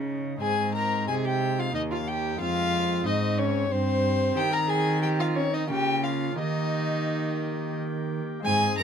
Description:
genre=classical, baroque-style sonata movement with continuo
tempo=90 BPM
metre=3/4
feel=straight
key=unclear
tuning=A4 = 440 Hz
part: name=pipe organ, cornet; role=accompaniment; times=0.0-8.8 s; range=Eb2 to Ab4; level=-32 LUFS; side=left 1 dB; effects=none
part: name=rich cello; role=bass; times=0.0-8.8 s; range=Eb2 to Eb3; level=-29 LUFS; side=equal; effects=none
part: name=warm violin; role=melody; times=0.4-8.8 s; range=Ab4 to Bb5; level=-29 LUFS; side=left 6 dB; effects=none
part: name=rich violin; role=second line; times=0.4-8.8 s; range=C4 to Bb5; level=-29 LUFS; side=right 5 dB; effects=none
room=light reverb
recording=close, detailed microphones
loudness=-24 LUFS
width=side -7 dB against mid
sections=0.0-8.4 A section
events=none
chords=0.4 Ab; 1.8 Eb; 2.4 Fm; 4.4 Cm/Eb; 5.7 Bbm/Db; 6.4 Eb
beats=| 0.42 1.09 1.75 | 2.41 3.06 3.71 | 4.37 5.02 5.70 | 6.38 7.07 7.77 | 8.45

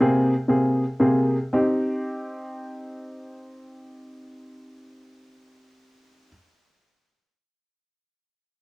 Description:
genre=pop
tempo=36-42 BPM (dotted quarters)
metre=6/8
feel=straight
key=Eb major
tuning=A4 = 439 Hz
part: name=clear concert grand piano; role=accompaniment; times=0.0-6.3 s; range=C3 to Ab4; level=-21 LUFS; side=equal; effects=none
room=moderate studio reverb, RT60 0.5 s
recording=home recording on cassette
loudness=-20 LUFS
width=side -24 dB against mid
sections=0.0-1.5 A section; 1.5-4.8 B section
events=slowing down 0.0-1.5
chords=0.0 Abadd9/C; 1.5 Eb6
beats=0.01 | 1.53 3.17

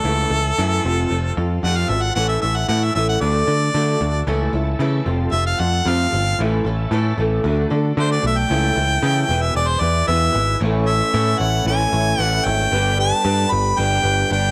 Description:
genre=folk rock and heartland rock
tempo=114 BPM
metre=4/4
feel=straight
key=A major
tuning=A4 = 439 Hz
part: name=clear harmonica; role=melody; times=0.0-14.5 s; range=A4 to B5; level=-23 LUFS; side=equal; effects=none
part: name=picked swing-style acoustic guitar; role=accompaniment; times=0.0-14.5 s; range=A2 to C#5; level=-29 LUFS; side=equal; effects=cassette tape
part: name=bright tonewheel organ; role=sustained chords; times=0.0-14.5 s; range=G#3 to B4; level=-39 LUFS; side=equal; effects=none
part: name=electric guitar through a small old amp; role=riff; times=0.0-14.5 s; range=E2 to G4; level=-27 LUFS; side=equal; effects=ensemble chorus, cassette tape
part: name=picked electric bass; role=bass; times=0.0-14.5 s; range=E1 to D3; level=-22 LUFS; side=equal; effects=none
room=light reverb, studio reverb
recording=home recording on cassette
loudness=-19 LUFS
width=mono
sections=0.0-10.6 A section; 10.6-14.5 B section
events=harmonica solo 0.0-10.6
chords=0.1 A/C#; 0.8 F; 2.2 A; 3.2 D; 4.3 A/C#; 5.1 F; 6.4 A; 7.4 D; 8.5 A/C#; 9.3 E; 10.6 A; 12.7 G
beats=| 0.05 0.58 1.11 1.64 | 2.17 2.69 3.22 3.75 | 4.28 4.80 5.33 5.86 | 6.39 6.92 7.44 7.97 | 8.50 9.03 9.55 10.08 | 10.61 11.13 11.66 12.19 | 12.72 13.24 13.77 14.29

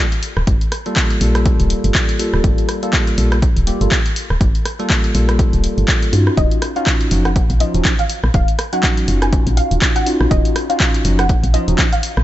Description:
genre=deep house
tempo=122 BPM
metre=4/4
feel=swing 57% on 16ths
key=unclear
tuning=A4 = 439 Hz
part: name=bell-like tine electric piano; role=stabs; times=0.0-11.8 s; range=F3 to A4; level=-21 LUFS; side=equal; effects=phaser, low-pass filter, ping-pong delay
part: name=punchy analog drum machine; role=drums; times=0.1-12.2 s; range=handclaps, hi-hat, rim click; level=-21 LUFS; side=equal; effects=none
part: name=woody FM bass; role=bass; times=0.4-12.2 s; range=D1 to G2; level=-16 LUFS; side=equal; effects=sidechain pumping
part: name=electronic kick drum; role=drums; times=0.5-11.9 s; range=none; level=-16 LUFS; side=equal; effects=none
part: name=soft round pluck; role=melody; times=6.4-12.2 s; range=Eb5 to Ab5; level=-23 LUFS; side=right 1 dB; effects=ensemble chorus, vintage 12-bit sampler grit, digital delay
room=little or no reverb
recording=nothing above 7.9 kHz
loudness=-13 LUFS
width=side -14 dB against mid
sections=0.0-12.2 A section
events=none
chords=0.0 Gm9; 6.4 Ebm9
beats=| 0.47 0.96 1.46 1.95 | 2.44 2.93 3.42 3.92 | 4.41 4.90 5.39 5.88 | 6.38 6.87 7.36 7.85 | 8.34 8.83 9.33 9.82 | 10.31 10.80 11.29 11.79

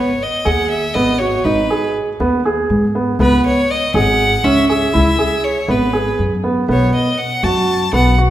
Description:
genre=contemporary instrumental, chamber music in an uneven meter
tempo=241 BPM (eighths)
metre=7/8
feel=straight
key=C# minor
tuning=A4 = 440 Hz
part: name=bright violin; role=melody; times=0.0-8.2 s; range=B4 to A5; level=-18 LUFS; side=left 1 dB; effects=none
part: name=felt-muted upright piano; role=arpeggios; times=0.0-8.3 s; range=B3 to G#4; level=-16 LUFS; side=right 2 dB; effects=none
part: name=upright bass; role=bass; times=0.5-8.3 s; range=G#1 to G#2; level=-19 LUFS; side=left 1 dB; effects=none
room=wet recital hall reverb, RT60 1.8 s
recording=recorded in a church or concert hall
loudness=-13 LUFS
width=side -12 dB against mid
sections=0.0-8.3 A section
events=none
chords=0.0 G#m; 3.2 C#m7; 6.7 B7(no3)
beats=0.20 0.45 0.70 0.95 1.20 | 1.45 1.70 1.95 2.20 2.45 2.70 2.95 | 3.20 3.45 3.69 3.94 4.19 4.44 4.69 | 4.94 5.19 5.44 5.69 5.94 6.19 6.44 | 6.68 6.93 7.18 7.43 7.68 7.93 8.18

